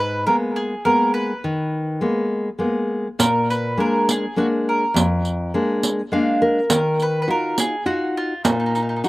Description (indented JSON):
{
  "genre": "italian folk, Italian serenade",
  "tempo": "103 BPM",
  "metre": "3/4",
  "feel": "straight",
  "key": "Eb harmonic minor",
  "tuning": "A4 = 440 Hz",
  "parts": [
    { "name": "mandolin", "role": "melody", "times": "0.0-9.1 s", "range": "Eb4 to Cb5", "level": "-23 LUFS", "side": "right 1 dB", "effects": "slapback echo" },
    { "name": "nylon-string guitar", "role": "accompaniment", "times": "0.0-9.1 s", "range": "F2 to F5", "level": "-20 LUFS", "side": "left 1 dB", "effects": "none" },
    { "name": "riq", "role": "percussion", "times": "3.2-9.1 s", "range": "none", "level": "-21 LUFS", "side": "right 3 dB", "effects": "none" }
  ],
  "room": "little or no reverb",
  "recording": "recorded outdoors, with no room sound, faint mains hum",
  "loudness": "-18 LUFS",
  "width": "side -19 dB against mid",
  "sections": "0.0-9.1 A section",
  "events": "nylon-string guitar fill 5.8-6.7",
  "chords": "0.0 Abmadd9; 3.2 Bb7; 6.7 Ebmadd9"
}